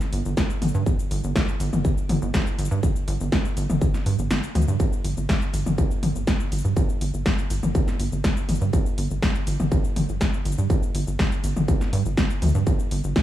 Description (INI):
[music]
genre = melodic techno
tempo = 122 BPM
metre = 4/4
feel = straight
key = unclear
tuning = A4 = 440 Hz
[part]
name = punchy analog drum machine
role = drums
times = 0.0-13.2 s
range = hi-hat, shaker, snare drum, toms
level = -27 LUFS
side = left 1 dB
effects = overdrive, sidechain pumping on perc, sidechain pumping on hats, sidechain pumping on toms
[part]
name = tight sequencer bass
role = bass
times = 0.1-13.2 s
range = G1 to G2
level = -24 LUFS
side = right 1 dB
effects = sidechain pumping
[part]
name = electronic kick drum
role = drums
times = 0.4-13.2 s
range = none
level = -23 LUFS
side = equal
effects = distortion
[sound]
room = little or no reverb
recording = studio ambience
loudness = -21 LUFS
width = side -12 dB against mid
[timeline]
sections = 0.0-13.2 A section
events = kick drops out 4.3-4.8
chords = none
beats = 0.37 | 0.86 1.36 1.85 2.34 | 2.83 3.32 3.81 4.31 | 4.80 5.29 5.78 6.27 | 6.77 7.26 7.75 8.24 | 8.73 9.22 9.72 10.21 | 10.70 11.19 11.68 12.18 | 12.67 13.16